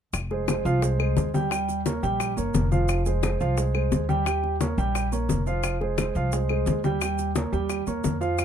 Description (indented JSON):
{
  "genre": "latin, salsa",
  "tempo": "175 BPM",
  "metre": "4/4",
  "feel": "straight",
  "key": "F minor",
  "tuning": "A4 = 440 Hz",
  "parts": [
    { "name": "upright bass", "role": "bass", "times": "0.1-8.4 s", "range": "F1 to F2", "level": "-27 LUFS", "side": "left 1 dB", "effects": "none" },
    { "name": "bongos", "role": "percussion", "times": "0.1-8.4 s", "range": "none", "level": "-32 LUFS", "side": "left 7 dB", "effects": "none" },
    { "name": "claves", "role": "percussion", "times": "0.1-8.4 s", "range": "none", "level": "-34 LUFS", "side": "left 8 dB", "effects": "none" },
    { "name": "congas", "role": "percussion", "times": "0.1-8.4 s", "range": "none", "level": "-29 LUFS", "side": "left 3 dB", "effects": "none" },
    { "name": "maracas", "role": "percussion", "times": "0.1-8.4 s", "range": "none", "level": "-39 LUFS", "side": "right 7 dB", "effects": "none" },
    { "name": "dark baby grand piano", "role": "accompaniment", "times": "0.3-8.4 s", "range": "F3 to G5", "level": "-27 LUFS", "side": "right 3 dB", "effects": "none" }
  ],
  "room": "little or no reverb",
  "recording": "close, detailed microphones",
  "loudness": "-23 LUFS",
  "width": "side -8 dB against mid",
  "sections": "0.1-8.4 A section",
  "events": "none",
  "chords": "0.1 Fm7; 1.5 Eb7; 2.9 Fm7; 4.3 Eb7; 5.6 Fm7; 7.0 Eb7"
}